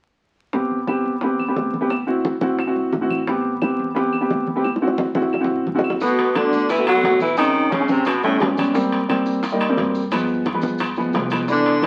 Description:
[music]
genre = Afro-Cuban jazz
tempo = 175 BPM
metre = 4/4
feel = straight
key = G major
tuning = A4 = 440 Hz
[part]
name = warm concert grand piano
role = accompaniment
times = 0.5-11.9 s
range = E3 to G4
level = -22 LUFS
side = equal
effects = none
[part]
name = upright bass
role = bass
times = 0.5-11.9 s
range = G1 to G2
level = -37 LUFS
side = equal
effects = none
[part]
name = bongos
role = percussion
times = 0.5-11.9 s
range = none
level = -31 LUFS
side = equal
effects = none
[part]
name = congas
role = percussion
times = 0.5-11.9 s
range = none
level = -33 LUFS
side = equal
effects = none
[part]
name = claves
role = percussion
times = 0.9-11.9 s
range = none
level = -36 LUFS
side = equal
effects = none
[part]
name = breathy tenor saxophone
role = melody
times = 6.0-8.6, 11.5-11.9 s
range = A3 to F#4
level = -24 LUFS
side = equal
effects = none
[part]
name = breathy baritone saxophone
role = second line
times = 6.0-8.6, 11.5-11.9 s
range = A2 to F#3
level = -22 LUFS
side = equal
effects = none
[part]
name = maracas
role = percussion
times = 6.0-11.9 s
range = none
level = -45 LUFS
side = equal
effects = none
[part]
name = timbales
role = percussion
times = 6.2-11.9 s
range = none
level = -30 LUFS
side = equal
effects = none
[sound]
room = moderate studio reverb, RT60 0.7 s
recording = very old 78 rpm record, vinyl crackle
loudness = -20 LUFS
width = mono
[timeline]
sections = 0.5-6.0 A section; 6.0-11.9 B section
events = drum fill 4.6-6.0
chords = 0.5 Am7; 1.9 D9; 3.3 Am7; 4.6 D9; 6.0 Gmaj9; 7.4 Bbm7; 8.1 A9; 8.7 Abmaj7; 10.1 G7b9

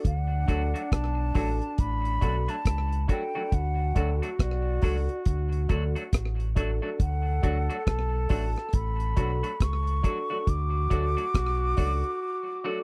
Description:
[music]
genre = roots reggae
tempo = 69 BPM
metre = 4/4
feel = swing 61% on 16ths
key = D major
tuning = A4 = 440 Hz
[part]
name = bright trombone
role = second line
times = 0.0-12.8 s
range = D4 to A4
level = -39 LUFS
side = equal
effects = tape echo
[part]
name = deep reggae drum kit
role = drums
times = 0.0-12.2 s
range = hi-hat, kick drum, rim click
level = -28 LUFS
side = equal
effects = none
[part]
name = mellow hollow silver concert flute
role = melody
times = 0.1-12.8 s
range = D5 to D6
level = -36 LUFS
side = equal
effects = tape echo
[part]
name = deep dub fingered electric bass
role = bass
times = 0.1-12.0 s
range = A1 to D2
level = -30 LUFS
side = equal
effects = none
[part]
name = semi-hollow electric guitar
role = accompaniment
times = 0.5-12.8 s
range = F#3 to F#4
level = -41 LUFS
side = equal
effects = subtle chorus, tape echo
[part]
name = dark upright piano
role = stabs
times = 0.5-12.8 s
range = D4 to A4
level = -37 LUFS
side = equal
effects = none
[sound]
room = little or no reverb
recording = dry, close 1970s-style studio recording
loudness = -27 LUFS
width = mono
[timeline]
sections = 0.0-12.8 A section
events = break 12.2-12.8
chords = 0.0 D

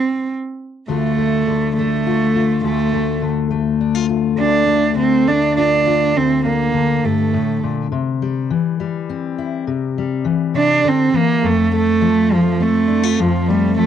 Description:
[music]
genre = folk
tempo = 68 BPM (dotted quarters)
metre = 6/8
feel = straight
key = D minor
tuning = A4 = 444 Hz
[part]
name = warm cello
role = melody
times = 0.0-7.7, 10.6-13.9 s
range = F3 to D4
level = -16 LUFS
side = right 5 dB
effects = cassette tape
[part]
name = fingerpicked steel-string acoustic guitar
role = accompaniment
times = 0.9-13.9 s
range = D2 to F4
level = -18 LUFS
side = left 7 dB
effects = none
[sound]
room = moderate small room reverb, RT60 0.5 s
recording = home recording on cassette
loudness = -15 LUFS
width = side -9 dB against mid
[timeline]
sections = 0.9-13.9 A section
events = none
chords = 0.0 N.C.; 0.9 Dm; 7.9 C; 11.4 F

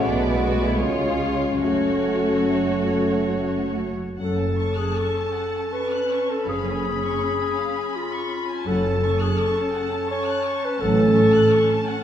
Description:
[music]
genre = classical, slow romantic movement for symphony orchestra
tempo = 68-88 BPM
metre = 3/4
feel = rubato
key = F# minor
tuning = A4 = 438 Hz
[part]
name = muted chamber violin section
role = melody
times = 0.0-12.0 s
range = C#5 to B5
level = -34 LUFS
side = left 2 dB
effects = none
[part]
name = concert flute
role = second line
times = 0.0-3.8 s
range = C#5 to F#5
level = -31 LUFS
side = right 1 dB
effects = none
[part]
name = mellow clarinet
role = second line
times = 0.0-11.9 s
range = B3 to C#5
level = -23 LUFS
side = left 1 dB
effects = none
[part]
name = muted chamber violin section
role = second line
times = 0.0-12.0 s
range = D4 to F#6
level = -31 LUFS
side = left 2 dB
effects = none
[part]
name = muted chamber viola section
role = accompaniment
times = 0.0-12.0 s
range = G#3 to B4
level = -31 LUFS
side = right 1 dB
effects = none
[part]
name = warm bassoon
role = accompaniment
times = 0.0-3.8 s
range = G#3 to A3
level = -30 LUFS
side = right 1 dB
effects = none
[part]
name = mellow French horn section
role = sustained chords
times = 0.0-11.1 s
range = E#3 to F#4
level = -27 LUFS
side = left 2 dB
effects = none
[part]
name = muted chamber cello section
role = bass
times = 0.0-11.4 s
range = F#2 to C#3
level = -28 LUFS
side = right 3 dB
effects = none
[part]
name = muted chamber double bass section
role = bass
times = 0.0-11.4 s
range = F#1 to C#2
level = -28 LUFS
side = right 3 dB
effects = none
[sound]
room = wet recital hall reverb, RT60 1.7 s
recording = heard from further back in the room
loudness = -20 LUFS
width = side -10 dB against mid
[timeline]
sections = 0.0-4.2 A section; 4.2-12.0 B section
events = none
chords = 0.0 G#m7b5/B; 0.8 C#; 1.6 F#m; 6.5 C#7/F#; 8.7 F#m; 10.8 F#m/A

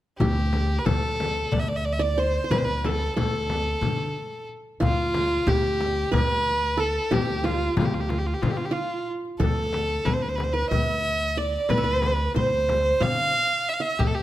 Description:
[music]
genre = Turkish makam ensemble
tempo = 183 BPM (eighths)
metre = 7/8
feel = straight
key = D makam huseyni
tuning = A4 = 439 Hz
[part]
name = rich violin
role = melody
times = 0.2-14.2 s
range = F4 to F5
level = -25 LUFS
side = equal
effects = none
[part]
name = qanun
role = second line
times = 0.2-14.2 s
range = F4 to F5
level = -30 LUFS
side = right 2 dB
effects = none
[part]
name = upright bass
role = bass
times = 0.2-14.2 s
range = D2 to D3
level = -27 LUFS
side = equal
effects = none
[part]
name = darbuka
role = percussion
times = 0.2-14.1 s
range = none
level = -31 LUFS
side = left 3 dB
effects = none
[part]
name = frame drum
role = percussion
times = 0.2-14.2 s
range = none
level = -30 LUFS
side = left 3 dB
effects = none
[sound]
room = moderate recital hall reverb, RT60 1.6 s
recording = none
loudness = -22 LUFS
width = side -14 dB against mid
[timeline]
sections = 0.2-14.2 A section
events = none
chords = none

